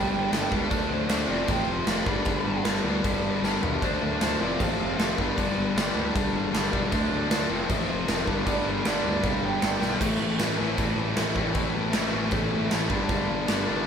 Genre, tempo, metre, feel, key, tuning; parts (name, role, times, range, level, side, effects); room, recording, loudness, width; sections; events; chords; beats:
punk rock; 155 BPM; 4/4; straight; G major; A4 = 440 Hz
bluesy overdriven lead guitar; melody; 0.0-5.2, 8.1-10.0 s; Bb4 to C6; -32 LUFS; right 3 dB; distortion
overdriven semi-hollow guitar; riff; 0.0-13.9 s; F2 to E4; -28 LUFS; left 6 dB
tight distorted guitar; riff; 0.0-13.9 s; F2 to D4; -31 LUFS; right 8 dB; distortion
fuzz picked electric bass; bass; 0.0-13.8 s; F1 to D2; -32 LUFS; right 1 dB; overdrive
big rock drum kit; drums; 0.3-13.6 s; crash cymbal, kick drum, snare drum, toms; -28 LUFS; equal
light reverb; band playing live in one room; -23 LUFS; side -7 dB against mid
0.0-10.0 A section; 10.0-13.9 B section
drum fill 3.4-3.8, 9.8
0.0 G; 0.7 D; 1.3 F; 2.1 G; 3.8 D; 4.4 F; 5.2 G; 6.9 D; 7.5 F; 8.3 G; 10.0 Am; 12.9 G
0.32 | 0.71 1.10 1.49 1.88 | 2.27 2.65 3.04 3.43 | 3.82 4.21 4.59 4.98 | 5.37 5.76 6.15 6.53 | 6.92 7.31 7.69 8.08 | 8.47 8.85 9.24 9.62 | 10.01 10.40 10.78 11.17 | 11.55 11.94 12.32 12.71 | 13.09 13.48 13.86